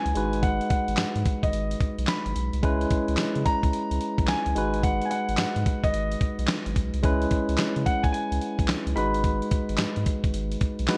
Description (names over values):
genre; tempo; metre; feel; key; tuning
R&B, new jack swing; 109 BPM; 4/4; swing 64% on 16ths; unclear; A4 = 440 Hz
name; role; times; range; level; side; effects
dark baby grand piano; melody; 0.0-10.0 s; D#5 to B5; -32 LUFS; equal; none
barky tine electric piano; accompaniment; 0.0-11.0 s; G#3 to B5; -31 LUFS; equal; none
round analog bass; bass; 0.1-10.9 s; G#1 to C#3; -31 LUFS; equal; none
dusty soul sampler-style drum kit; drums; 0.1-11.0 s; handclaps, hi-hat, kick drum, snare drum; -29 LUFS; equal; none
room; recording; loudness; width
moderate plate reverb, RT60 1.6 s, digital ambience; bright 1980s-style digital production; -26 LUFS; mono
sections
0.0-11.0 A section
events
tine electric piano fill 1.8-2.6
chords
0.2 G#m7; 2.6 C#m7; 4.6 G#m7; 7.0 C#m7; 9.0 G#m7